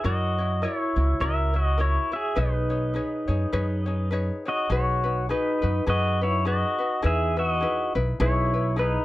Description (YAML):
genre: Hawaiian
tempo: 103 BPM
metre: 4/4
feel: swing 58% on 8ths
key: B major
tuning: A4 = 439 Hz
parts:
  - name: pedal steel guitar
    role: melody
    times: 0.0-9.0 s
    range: D#4 to E5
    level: -26 LUFS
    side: left 1 dB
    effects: none
  - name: ukulele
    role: accompaniment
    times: 0.0-9.0 s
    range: D#4 to C#5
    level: -31 LUFS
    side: left 3 dB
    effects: none
  - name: upright bass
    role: bass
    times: 0.0-9.0 s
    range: B1 to F#2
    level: -25 LUFS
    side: equal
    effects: none
room: light reverb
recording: dark, warm production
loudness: -22 LUFS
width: side -16 dB against mid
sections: 0.0-4.7 A section; 4.7-9.0 A section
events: none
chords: 0.1 F#7; 2.4 B69; 4.7 B6